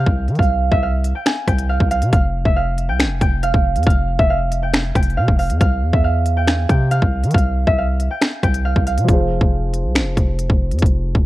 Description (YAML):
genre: hip hop, drill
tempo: 138 BPM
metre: 4/4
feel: half-time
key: F harmonic minor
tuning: A4 = 439 Hz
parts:
  - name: concert harp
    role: melody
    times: 0.0-10.5 s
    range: E5 to Ab5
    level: -22 LUFS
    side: right 2 dB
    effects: digital delay
  - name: distorted 808-style bass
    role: bass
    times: 0.0-11.3 s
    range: F1 to E3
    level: -19 LUFS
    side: equal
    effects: distortion
  - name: drill drum kit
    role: drums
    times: 0.1-11.3 s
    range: finger snaps, hi-hat, kick drum, rim click, snare drum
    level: -17 LUFS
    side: equal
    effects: overdrive
  - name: felt-muted upright piano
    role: accompaniment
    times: 9.0-11.3 s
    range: F3 to C5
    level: -24 LUFS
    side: left 2 dB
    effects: none
room: small room ambience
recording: worn, warbling old tape, cassette tape, warbly pitch drift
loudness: -15 LUFS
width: side -16 dB against mid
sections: 0.0-11.3 A section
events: none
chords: 0.0 Csus4; 2.1 F5; 5.6 Csus4; 9.1 Fm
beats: | 0.39 0.82 1.26 1.69 | 2.13 2.56 3.00 3.43 | 3.87 4.30 4.74 5.17 | 5.61 6.04 6.48 6.91 | 7.34 7.78 8.21 8.65 | 9.08 9.52 9.95 10.39 | 10.82 11.26